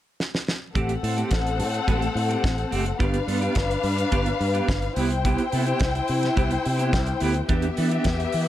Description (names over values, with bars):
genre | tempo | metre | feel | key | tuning
disco | 107 BPM | 4/4 | straight | A minor | A4 = 440 Hz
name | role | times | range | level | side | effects
damped 70s drum kit | drums | 0.2-8.5 s | hi-hat, kick drum, snare drum | -27 LUFS | equal | none
warm studio string section | second line | 0.7-8.5 s | B3 to G5 | -26 LUFS | left 4 dB | none
clean electric guitar | accompaniment | 0.8-8.2 s | A3 to A4 | -28 LUFS | right 4 dB | tremolo
fingered electric bass | bass | 0.8-8.5 s | F#1 to E3 | -26 LUFS | equal | none
room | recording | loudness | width
light reverb, studio reverb | dark, warm production | -21 LUFS | side -12 dB against mid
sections
0.8-8.5 A section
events
drum fill 0.2-0.8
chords
0.0 N.C.; 0.8 Am7; 3.0 G7; 5.0 Cmaj7; 7.5 Em7